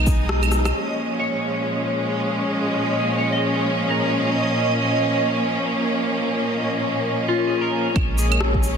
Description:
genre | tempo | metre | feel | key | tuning
future garage | 133 BPM | 4/4 | swing 60% on 16ths | Bb phrygian | A4 = 440 Hz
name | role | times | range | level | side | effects
clear studio string section | sustained chords | 0.0-8.8 s | Bb2 to D#4 | -21 LUFS | equal | sidechain pumping
warm sub bass | bass | 0.0-0.7, 8.0-8.8 s | Bb1 to B1 | -21 LUFS | equal | sidechain pumping
backwards swelling texture | texture | 0.0-8.0 s | Eb5 | -28 LUFS | right 2 dB | built-in reverb
clean electric guitar | accompaniment | 0.1-8.8 s | F4 to Eb5 | -27 LUFS | left 2 dB | analog chorus, sidechain pumping, digital delay
electronic kick drum | drums | 0.1-0.2, 8.0-8.6 s | none | -21 LUFS | equal | overdrive
electronic shaker, rim click and claves | drums | 0.1-0.7, 8.0-8.7 s | none | -26 LUFS | equal | overdrive
room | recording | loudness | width
light reverb, digital ambience | dense, heavily limited modern master | -19 LUFS | side -6 dB against mid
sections
0.7-8.0 A section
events
band accent 0.3; drum fill 0.5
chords
0.0 B6; 0.7 Bbm7

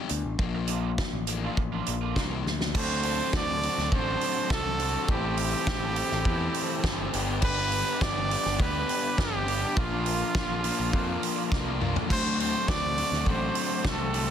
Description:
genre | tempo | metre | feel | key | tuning
indie rock | 103 BPM | 4/4 | straight | unclear | A4 = 441 Hz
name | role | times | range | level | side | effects
crunchy overdriven guitar | riff | 0.0-14.3 s | E3 to A4 | -32 LUFS | left 11 dB | none
growling picked electric bass | bass | 0.1-14.3 s | G1 to F2 | -32 LUFS | equal | overdrive
loose indie drum kit | drums | 0.1-14.3 s | crash cymbal, hi-hat, kick drum, snare drum, toms | -30 LUFS | equal | none
raw garage guitar | riff | 0.5-14.3 s | G2 to A4 | -35 LUFS | right 9 dB | overdrive, analog chorus
clear trumpet | melody | 2.8-14.3 s | F4 to D5 | -30 LUFS | right 3 dB | none
combo organ | sustained chords | 2.8-14.3 s | Bb4 to E6 | -42 LUFS | equal | none
glockenspiel with soft plastic mallets | second line | 12.1-14.3 s | A5 to D6 | -43 LUFS | left 3 dB | none
room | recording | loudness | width
studio reverb | dense, heavily limited modern master | -25 LUFS | side -9 dB against mid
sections
0.0-2.8 A section; 2.8-14.3 B section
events
drum fill 2.5, 11.5-12.1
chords
0.4 Bbmaj7; 2.8 D7; 5.1 Am7; 7.1 Gmaj7; 9.8 Bbmaj7; 12.1 D7

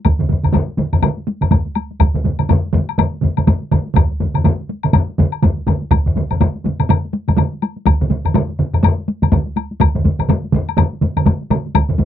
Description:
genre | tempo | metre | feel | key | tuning
japanese traditional, taiko drum ensemble | 123 BPM | 4/4 | swing 60% on 16ths | none | none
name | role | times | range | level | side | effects
taiko ensemble | percussion | 0.0-12.1 s | none | -19 LUFS | right 4 dB | none
woodblock | percussion | 0.0-11.9 s | none | -22 LUFS | left 19 dB | none
solo taiko drums | percussion | 0.1-11.9 s | none | -19 LUFS | right 1 dB | none
taiko ensemble | percussion | 0.1-12.1 s | none | -20 LUFS | left 2 dB | none
taiko ensemble | percussion | 0.1-12.1 s | none | -18 LUFS | left 2 dB | none
room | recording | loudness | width
light reverb | dry, close 1970s-style studio recording | -14 LUFS | side -10 dB against mid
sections
0.0-12.1 A section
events
none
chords
none

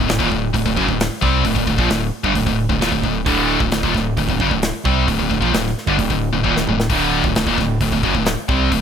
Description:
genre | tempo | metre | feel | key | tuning
heavy metal | 132 BPM | 4/4 | straight | D phrygian dominant | A4 = 440 Hz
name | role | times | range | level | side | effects
scooped high-gain guitar | riff | 0.0-8.8 s | D2 to C4 | -19 LUFS | left 9 dB | distortion
sludgy distorted guitar | riff | 0.0-8.8 s | D2 to C4 | -21 LUFS | right 11 dB | overdrive
saturated sub bass | bass | 0.0-8.8 s | D1 to C2 | -25 LUFS | equal | none
modern studio drum kit | drums | 0.1-8.8 s | hi-hat, kick drum, snare drum, toms | -22 LUFS | equal | none
room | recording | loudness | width
studio ambience | none | -15 LUFS | side -8 dB against mid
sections
0.0-8.8 A section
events
drum fill 6.4-6.9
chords
0.0 D5

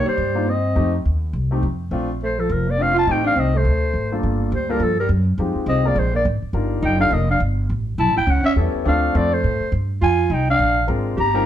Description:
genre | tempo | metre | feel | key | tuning
jazz, small-group swing and bop | 208 BPM | 4/4 | swing 60% on 8ths | Bb major | A4 = 440 Hz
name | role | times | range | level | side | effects
growling clarinet | melody | 0.0-11.5 s | A4 to Bb5 | -21 LUFS | left 1 dB | none
breathy alto saxophone | second line | 0.0-11.5 s | F3 to G4 | -24 LUFS | right 3 dB | none
warm baby grand piano | accompaniment | 0.0-11.4 s | G2 to Bb4 | -25 LUFS | left 3 dB | none
upright bass | bass | 0.0-11.4 s | F1 to A2 | -20 LUFS | equal | none
room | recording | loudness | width
moderate studio reverb, RT60 0.7 s | heard from further back in the room | -17 LUFS | side -10 dB against mid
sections
0.0-4.2 A section; 4.2-11.5 B section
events
none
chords
0.0 Cm9; 0.8 F7; 1.9 Bbmaj9; 3.1 Am7b5; 3.6 D5; 4.2 Gm7; 5.4 Fm7; 6.0 Abadd9; 6.5 Ebmaj7; 7.7 A7; 8.8 Dm7; 10.0 Fm; 10.6 Bb7

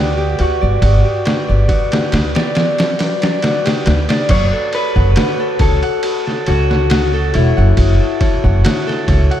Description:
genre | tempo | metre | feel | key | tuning
trip hop | 69 BPM | 4/4 | swing 53% on 16ths | F# phrygian | A4 = 441 Hz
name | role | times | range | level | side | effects
electric guitar at the edge of break-up | melody | 0.0-9.4 s | E4 to C#5 | -21 LUFS | left 2 dB | tape echo
Celtic harp | arpeggios | 0.0-9.4 s | F#4 to F#5 | -20 LUFS | equal | ping-pong delay
upright bass | bass | 0.0-9.3 s | E1 to D2 | -14 LUFS | equal | none
trip hop sampler-style drum kit | drums | 0.4-9.4 s | crash cymbal, kick drum, ride cymbal, snare drum | -17 LUFS | equal | overdrive, studio reverb
room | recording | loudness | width
light reverb, studio ambience | none | -12 LUFS | side -11 dB against mid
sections
0.0-4.3 A section; 4.3-9.4 B section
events
none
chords
0.0 Gmaj7; 4.3 F#m

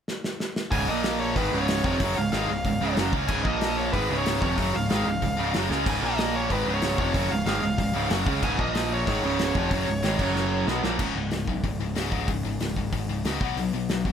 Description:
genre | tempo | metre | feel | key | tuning
punk rock | 187 BPM | 4/4 | straight | Db mixolydian | A4 = 440 Hz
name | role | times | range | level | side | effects
loose indie drum kit | drums | 0.1-14.1 s | crash cymbal, hi-hat, kick drum, snare drum | -30 LUFS | equal | none
bluesy overdriven lead guitar | melody | 0.7-10.6 s | Cb5 to Ab5 | -30 LUFS | equal | distortion, tape echo
cranked stack guitar | riff | 0.7-11.0 s | Db2 to Db4 | -28 LUFS | right 5 dB | overdrive
tight distorted guitar | riff | 0.7-14.1 s | Db2 to Db4 | -28 LUFS | left 4 dB | distortion
fuzz picked electric bass | bass | 0.7-14.1 s | Db1 to Db2 | -31 LUFS | equal | overdrive
room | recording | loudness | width
little or no reverb | none | -23 LUFS | side -8 dB against mid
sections
0.7-11.0 A section; 11.0-14.1 B section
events
drum fill 0.1-0.7, 5.7, 10.4-11.0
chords
0.0 N.C.; 0.7 Db5; 0.9 Bb5; 1.4 Db; 3.5 Bb5; 3.9 Db; 6.0 Bb5; 6.5 Db; 8.6 Bb5; 9.1 Db; 10.2 Gb5; 10.7 Gbadd11; 11.0 Db5; 13.4 Cb5

